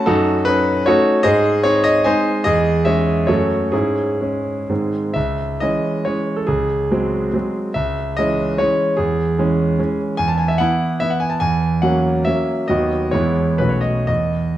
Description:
classical, romantic triple-time dance for piano with dotted rhythms; 111-163 BPM; 3/4; rubato; C# minor, E major from 10.2 s; A4 = 440 Hz
clear concert grand piano; solo; 0.0-14.6 s; B1 to A5; -16 LUFS; equal
wet recital hall reverb, RT60 1.8 s; -16 LUFS; side -13 dB against mid
0.0-5.2 A section; 5.2-14.6 B section
0.1 D#m7b5/F#; 1.3 G#; 2.5 C#m/E; 3.3 F#m; 3.7 C#m/G#; 4.7 G#; 5.2 C#m; 6.5 G#7/C#; 7.8 C#m; 9.0 C#m/E; 10.2 E5; 11.4 F#7/E; 12.7 B/D#; 13.1 E; 13.6 B9
| 0.07 0.47 0.88 | 1.25 1.65 2.06 | 2.46 2.86 3.29 | 3.73 4.22 4.70 | 5.16 5.61 6.06 | 6.48 6.92 7.34 | 7.76 8.19 8.60 | 8.99 9.39 9.79 | 10.18 10.59 11.01 | 11.40 11.82 12.26 | 12.68 13.12 13.59 | 14.09

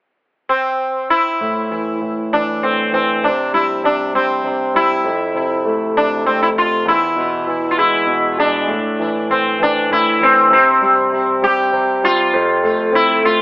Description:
six-eight pop ballad; 66 BPM (dotted quarters); 6/8; straight; A minor; A4 = 439 Hz
sitar; melody; 0.5-13.4 s; C4 to G4; -14 LUFS; equal; digital delay
clear concert grand piano; accompaniment; 1.4-13.4 s; E2 to C4; -19 LUFS; equal
moderate echo chamber reverb, RT60 1.3 s; telephone sound; -13 LUFS; side -21 dB against mid
0.0-1.4 A section; 1.4-8.7 B section; 8.7-13.4 C section
0.0 N.C.; 1.4 A5; 3.2 C5; 5.0 F; 6.9 E; 8.7 A5; 10.5 C5; 12.3 F
0.49 | 1.40 2.31 | 3.23 4.13 | 5.04 5.95 | 6.85 7.77 | 8.68 9.60 | 10.51 11.41 | 12.32 13.22

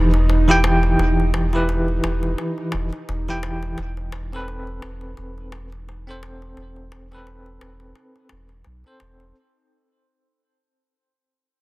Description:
trip hop; 86 BPM; 4/4; swing 56% on 16ths; A4 = 442 Hz
bell-like tine electric piano; accompaniment; 0.0-9.3 s; E3 to G5; -22 LUFS; equal; tremolo, tape echo
round analog bass; bass; 0.0-9.3 s; E1 to B1; -22 LUFS; equal
bowed-like drone; texture; 0.0-9.4 s; D#4; -29 LUFS; right 3 dB; built-in reverb
darbuka; percussion; 0.1-9.3 s; -30 LUFS; left 3 dB
digital ambience; dense, heavily limited modern master; -18 LUFS; side -20 dB against mid
0.0-9.4 A section
fade-out 0.0-9.4
0.0 Em; 3.8 Amadd9/E
0.29 | 0.98 1.68 2.38 3.08 | 3.78 4.47 5.17 5.87 | 6.57 7.26 7.96 8.66

